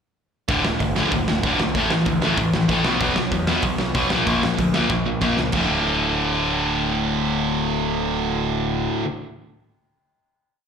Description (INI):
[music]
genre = punk rock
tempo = 190 BPM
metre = 4/4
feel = straight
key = unclear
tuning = A4 = 440 Hz
[part]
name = sludgy distorted guitar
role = riff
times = 0.5-9.1 s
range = D2 to B3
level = -22 LUFS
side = left 6 dB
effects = overdrive, slapback echo
[part]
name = tight distorted guitar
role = riff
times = 0.5-9.1 s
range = D2 to B3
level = -24 LUFS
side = right 13 dB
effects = distortion, slapback echo
[part]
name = growling picked electric bass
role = bass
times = 0.5-8.9 s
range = D1 to E2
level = -28 LUFS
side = equal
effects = overdrive
[part]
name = big rock drum kit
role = drums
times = 0.5-5.6 s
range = crash cymbal, hi-hat, kick drum, snare drum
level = -25 LUFS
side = equal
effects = none
[sound]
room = light reverb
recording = live gig heard through the venue's PA, club reverb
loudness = -19 LUFS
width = side -7 dB against mid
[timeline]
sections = 0.5-5.5 verse; 5.5-8.1 final chord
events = drum fill 4.9-5.5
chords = 0.5 D5; 1.8 A5; 2.9 B5; 4.1 Bb; 5.5 D5